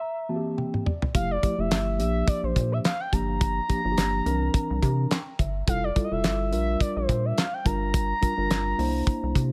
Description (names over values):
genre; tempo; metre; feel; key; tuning
early-eighties boogie funk; 106 BPM; 4/4; swing 56% on 16ths; unclear; A4 = 441 Hz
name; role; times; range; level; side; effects
expressive portamento lead; melody; 0.0-9.5 s; C5 to Bb5; -32 LUFS; equal; chorus
mellow tine electric piano; accompaniment; 0.0-9.5 s; E3 to Bb5; -32 LUFS; equal; none
damped 70s drum kit; drums; 0.6-9.5 s; handclaps, hi-hat, kick drum, snare drum, toms; -28 LUFS; equal; none
rubbery square bass; bass; 1.1-9.5 s; F1 to C3; -30 LUFS; equal; none
room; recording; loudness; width
small room ambience; none; -26 LUFS; mono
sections
0.0-1.1 A section; 1.1-9.5 B section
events
break 0.0-1.1; tine electric piano fill 0.0-1.1, 4.5-5.7; drum fill 0.6-1.1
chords
0.0 C7; 1.1 Fmaj9; 2.0 Bb6; 3.1 Gm7; 4.3 C9; 5.7 Fmaj9; 6.5 Bb6; 7.7 Gm7; 8.8 C9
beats
0.01 0.58 | 1.15 1.71 2.28 2.85 | 3.41 3.98 4.54 5.11 | 5.68 6.24 6.81 7.37 | 7.94 8.51 9.07